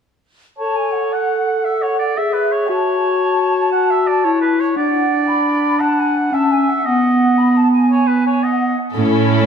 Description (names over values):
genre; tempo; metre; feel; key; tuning
cinematic, heroic adventure film score; 115 BPM (dotted quarters); 12/8; straight; A major; A4 = 440 Hz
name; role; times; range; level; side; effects
bright large flute ensemble; second line; 0.6-8.8 s; E5 to B5; -20 LUFS; equal; none
mellow clarinet; second line; 0.6-8.8 s; B3 to A4; -16 LUFS; equal; none
warm oboe; second line; 0.6-8.8 s; B4 to F#5; -21 LUFS; right 1 dB; none
rich studio violin section; melody; 9.0-9.5 s; A4; -20 LUFS; left 6 dB; none
warm symphonic violin section; second line; 9.0-9.5 s; E4; -20 LUFS; left 5 dB; none
warm symphonic viola section; accompaniment; 9.0-9.5 s; C#4; -18 LUFS; equal; none
rich symphonic cello section; bass; 9.0-9.5 s; A2; -15 LUFS; right 6 dB; none
room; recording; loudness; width
wet scoring stage reverb, RT60 1.9 s; dark, warm production; -14 LUFS; side -7 dB against mid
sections
0.6-9.0 A section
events
none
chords
0.6 A; 2.7 F#m; 4.8 D; 6.8 B